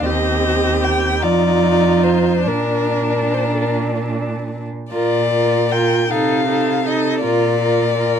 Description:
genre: classical, slow romantic movement for string quartet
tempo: 46-54 BPM (dotted quarters)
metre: 6/8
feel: rubato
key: Bb major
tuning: A4 = 441 Hz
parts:
  - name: warm violin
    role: melody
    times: 0.0-8.2 s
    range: A4 to G5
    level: -20 LUFS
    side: left 7 dB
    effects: none
  - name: dark violin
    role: second line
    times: 0.0-8.2 s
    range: C4 to Bb4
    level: -22 LUFS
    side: left 4 dB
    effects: none
  - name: warm viola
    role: accompaniment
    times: 0.0-8.2 s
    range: D4 to G4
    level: -21 LUFS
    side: right 4 dB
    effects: none
  - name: rich cello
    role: bass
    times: 0.1-8.2 s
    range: Eb2 to C3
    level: -20 LUFS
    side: right 4 dB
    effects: none
room: little or no reverb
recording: close, detailed microphones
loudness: -15 LUFS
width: side -8 dB against mid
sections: 0.0-4.9 A section; 4.9-8.2 B section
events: none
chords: 0.1 Cm/Eb; 1.2 Cmadd11/F; 2.5 Bb; 6.1 Adim/C; 7.2 Bb

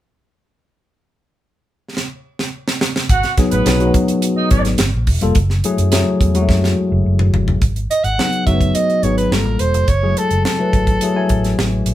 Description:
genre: polished 1980s jazz-funk pop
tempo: 106 BPM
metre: 4/4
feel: straight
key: unclear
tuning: A4 = 440 Hz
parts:
  - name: tight funk drum kit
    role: drums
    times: 2.0-11.9 s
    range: hi-hat, kick drum, snare drum, toms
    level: -18 LUFS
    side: right 1 dB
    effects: none
  - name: clear horn section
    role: second line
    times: 3.1-4.6 s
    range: B3 to F#5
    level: -20 LUFS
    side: right 4 dB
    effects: none
  - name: vintage muted fingered electric bass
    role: bass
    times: 3.1-11.9 s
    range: E1 to F#2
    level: -18 LUFS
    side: equal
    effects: none
  - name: tine electric piano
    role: accompaniment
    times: 3.4-11.9 s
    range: F#3 to G#5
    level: -18 LUFS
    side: left 3 dB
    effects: none
  - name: warm soprano saxophone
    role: melody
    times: 7.9-11.5 s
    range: A4 to F#5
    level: -19 LUFS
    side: right 2 dB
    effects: none
room: moderate studio reverb, RT60 0.5 s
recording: band playing live in one room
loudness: -14 LUFS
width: side -13 dB against mid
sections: 0.8-3.1 A section; 3.1-7.6 B section; 7.6-11.9 C section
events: drum fill 2.0-3.1, 6.5-7.6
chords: 0.8 N.C.; 3.1 G#m7; 4.8 Gm9; 5.4 F#m9; 7.6 G#m7; 9.3 Gm9; 9.9 F#m9

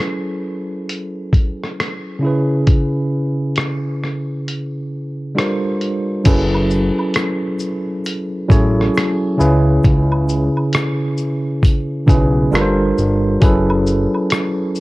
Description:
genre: lo-fi hip hop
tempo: 67 BPM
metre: 4/4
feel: swing 63% on 16ths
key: F# minor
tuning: A4 = 444 Hz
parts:
  - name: tine electric piano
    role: accompaniment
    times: 0.0-14.8 s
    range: C#3 to C#5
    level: -17 LUFS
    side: equal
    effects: medium stereo tremolo, cassette tape
  - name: lo-fi sampler-style drum kit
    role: drums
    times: 0.9-14.8 s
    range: crash cymbal, hi-hat, kick drum, rim click, shaker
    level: -16 LUFS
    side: equal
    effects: none
  - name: fat analog bass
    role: bass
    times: 6.3-14.1 s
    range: F#1 to C#2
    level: -18 LUFS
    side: equal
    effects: none
  - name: egg shaker and woodblock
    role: percussion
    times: 6.3-14.8 s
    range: none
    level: -29 LUFS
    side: right 1 dB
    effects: none
room: light reverb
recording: cassette tape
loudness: -15 LUFS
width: side -20 dB against mid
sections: 0.0-6.3 A section; 6.3-14.8 B section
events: break 4.5-6.3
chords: 0.0 F#m11; 2.2 C#m7; 5.4 Gm11; 6.3 F#m11; 9.4 C#m7; 12.5 Gm11; 13.4 F#m11

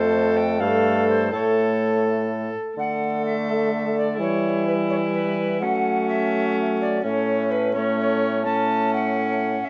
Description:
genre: classical, renaissance-style consort dance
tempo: 84 BPM (dotted quarters)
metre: 6/8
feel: straight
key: unclear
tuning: A4 = 443 Hz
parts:
  - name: mellow alto recorder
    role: melody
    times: 0.0-9.7 s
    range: B4 to A5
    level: -28 LUFS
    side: equal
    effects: none
  - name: rich viola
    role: second line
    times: 0.0-9.7 s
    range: C#4 to A4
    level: -28 LUFS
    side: equal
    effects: none
  - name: clear trombone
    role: accompaniment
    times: 0.0-9.6 s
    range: G3 to A3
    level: -27 LUFS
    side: equal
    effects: none
  - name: warm bassoon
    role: bass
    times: 0.0-9.6 s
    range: F2 to F#3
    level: -28 LUFS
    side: equal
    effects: none
room: moderate stone room reverb, RT60 1.0 s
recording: vinyl crackle, nothing above 7.9 kHz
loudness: -22 LUFS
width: mono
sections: 0.0-2.8 A section; 2.8-9.7 B section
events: none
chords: 0.0 F; 1.3 A; 2.8 D; 4.2 Em; 5.6 F#m; 7.0 A

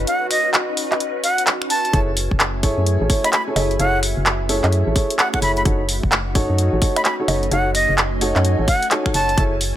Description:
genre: UK garage, two-step garage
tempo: 129 BPM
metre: 4/4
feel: swing 63% on 16ths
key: unclear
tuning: A4 = 438 Hz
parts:
  - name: soft string machine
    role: sustained chords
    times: 0.0-9.8 s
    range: A3 to G#5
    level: -30 LUFS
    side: equal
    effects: phaser, ensemble chorus, sidechain pumping
  - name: organ-like FM bass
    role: bass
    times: 0.0-9.7 s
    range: F#1 to F#2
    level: -21 LUFS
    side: equal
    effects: tube saturation
  - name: warbly tape-like pad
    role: texture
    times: 0.0-9.8 s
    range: F#4 to E5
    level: -30 LUFS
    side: left 1 dB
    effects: chorus, built-in reverb, sidechain pumping
  - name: breathy bright concert flute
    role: melody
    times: 0.1-9.4 s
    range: D#5 to B5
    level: -22 LUFS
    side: equal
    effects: digital delay
  - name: punchy analog drum machine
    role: drums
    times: 0.1-9.7 s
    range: bongos, finger snaps, handclaps, hi-hat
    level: -20 LUFS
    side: equal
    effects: none
  - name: dark grand piano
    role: stabs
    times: 1.9-9.5 s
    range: D#4 to C#5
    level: -23 LUFS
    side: right 1 dB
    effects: digital delay
  - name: electronic kick drum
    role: drums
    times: 1.9-9.5 s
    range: none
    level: -20 LUFS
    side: equal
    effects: none
room: little or no reverb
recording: none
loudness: -16 LUFS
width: side -12 dB against mid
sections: 0.0-9.8 A section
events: break 0.1-1.9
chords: 0.0 B/F#; 1.9 F#m9; 5.7 B7/F#

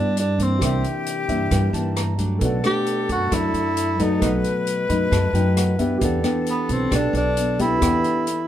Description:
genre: bossa nova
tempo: 133 BPM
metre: 4/4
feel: straight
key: E minor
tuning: A4 = 439 Hz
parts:
  - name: breathy tenor saxophone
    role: melody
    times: 0.0-8.5 s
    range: B3 to G4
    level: -22 LUFS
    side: right 1 dB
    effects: none
  - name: breathy concert flute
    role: second line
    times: 0.0-8.4 s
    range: G4 to B4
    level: -28 LUFS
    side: left 4 dB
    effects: none
  - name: nylon-string guitar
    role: accompaniment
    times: 0.0-8.5 s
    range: F#2 to G4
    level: -24 LUFS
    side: left 1 dB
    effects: none
  - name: warm grand piano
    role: accompaniment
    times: 0.0-8.5 s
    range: G4 to B5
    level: -31 LUFS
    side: right 5 dB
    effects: none
  - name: upright bass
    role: bass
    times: 0.0-8.0 s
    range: B1 to G2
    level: -24 LUFS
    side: right 1 dB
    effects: none
  - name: open jazz drum kit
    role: drums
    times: 0.2-8.4 s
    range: hi-hat, kick drum, rim click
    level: -28 LUFS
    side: equal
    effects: none
room: little or no reverb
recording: none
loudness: -18 LUFS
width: side -11 dB against mid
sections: 0.0-8.5 A section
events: grand piano fill 1.1-2.4, 4.7-6.0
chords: 0.0 Cmaj7; 0.6 C9; 2.4 Bm7; 4.2 B7; 6.0 Em7

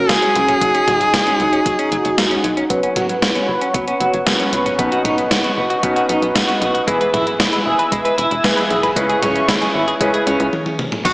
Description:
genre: synthwave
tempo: 115 BPM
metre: 4/4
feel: straight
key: unclear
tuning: A4 = 440 Hz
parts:
  - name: edgy tenor saxophone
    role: melody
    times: 0.0-2.6, 11.1 s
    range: F#4 to A#4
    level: -16 LUFS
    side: equal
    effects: tape echo
  - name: chorused pulse-width pad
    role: sustained chords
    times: 0.0-11.1 s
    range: C#4 to E6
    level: -21 LUFS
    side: equal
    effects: sidechain pumping
  - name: tight sequencer bass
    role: bass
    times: 0.0-11.1 s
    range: E1 to C#2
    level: -27 LUFS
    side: equal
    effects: none
  - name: clean electric guitar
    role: riff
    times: 0.1-10.5 s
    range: F#3 to B4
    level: -23 LUFS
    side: left 1 dB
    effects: analog chorus, low-pass filter, digital delay
  - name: electronic kick drum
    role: drums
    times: 0.1-11.1 s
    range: none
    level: -27 LUFS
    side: equal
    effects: none
  - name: gated 80s digital drum machine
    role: drums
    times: 0.1-11.1 s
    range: crash cymbal, hi-hat, snare drum, toms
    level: -20 LUFS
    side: equal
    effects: gated reverb, gated reverb snare
  - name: clean electric guitar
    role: arpeggios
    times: 2.7-11.1 s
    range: G#3 to B4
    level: -23 LUFS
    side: right 1 dB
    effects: tremolo, low-pass filter, digital delay
  - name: warm electric grand piano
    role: stabs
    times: 2.7-10.5 s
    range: B2 to B4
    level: -21 LUFS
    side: equal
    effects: low-pass filter, digital delay
room: wet recital hall reverb, RT60 1.7 s, digital ambience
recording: small speaker sound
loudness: -14 LUFS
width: side -23 dB against mid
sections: 0.0-2.7 A section; 2.7-11.1 B section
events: kick drops out 2.2-2.7; filter sweep on clean electric guitar 2.7-11.1; filter sweep on electric grand piano 2.7-11.1; drum fill 10.5-11.1; stop 10.5-11.1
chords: 0.0 F#sus4; 4.8 Badd9; 6.9 E; 9.0 C#m7

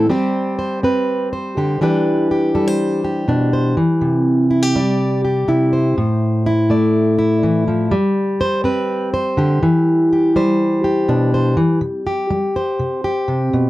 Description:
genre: folk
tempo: 123 BPM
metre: 4/4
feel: straight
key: C major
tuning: A4 = 440 Hz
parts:
  - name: fingerpicked plugged-in steel-string acoustic guitar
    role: solo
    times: 0.0-13.7 s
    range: A2 to D5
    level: -14 LUFS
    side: equal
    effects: none
room: little or no reverb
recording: dry, close 1970s-style studio recording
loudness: -14 LUFS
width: side -16 dB against mid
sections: 0.0-11.8 A section; 11.8-13.7 B section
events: build-up 0.0-11.8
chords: 0.1 Gsus4; 1.8 Em7; 4.0 C; 6.0 A5; 7.9 Gsus4; 9.6 Em7; 11.8 C5

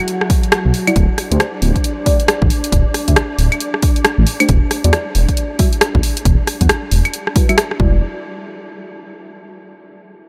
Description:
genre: UK garage, two-step garage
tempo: 136 BPM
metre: 4/4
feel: swing 61% on 16ths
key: E minor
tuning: A4 = 438 Hz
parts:
  - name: soft string machine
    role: sustained chords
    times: 0.0-7.8 s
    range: F#3 to D5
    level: -28 LUFS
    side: equal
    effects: ensemble chorus, sidechain pumping
  - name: house drum kit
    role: drums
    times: 0.1-7.8 s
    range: claves, hi-hat, rim click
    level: -21 LUFS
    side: equal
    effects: overdrive
  - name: electronic kick drum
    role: drums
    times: 0.3-7.9 s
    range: none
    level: -18 LUFS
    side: equal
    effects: overdrive
  - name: dark detuned saw bass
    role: bass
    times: 0.7-8.0 s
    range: D1 to E2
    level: -17 LUFS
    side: equal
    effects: tube saturation
  - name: deep mellow chord stab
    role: stabs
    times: 0.9-8.0 s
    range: G3 to F#5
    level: -27 LUFS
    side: equal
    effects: chorus, phaser, tape echo
room: light reverb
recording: none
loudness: -15 LUFS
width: mono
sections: 0.0-8.0 A section; 8.0-9.8 B section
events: filter sweep on detuned saw bass 0.0-8.0; filter sweep on synth stab 0.0-8.0; filter sweep on string machine 0.0-8.0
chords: 0.0 Em9; 1.0 Dsus4; 4.5 Em9; 8.0 N.C.

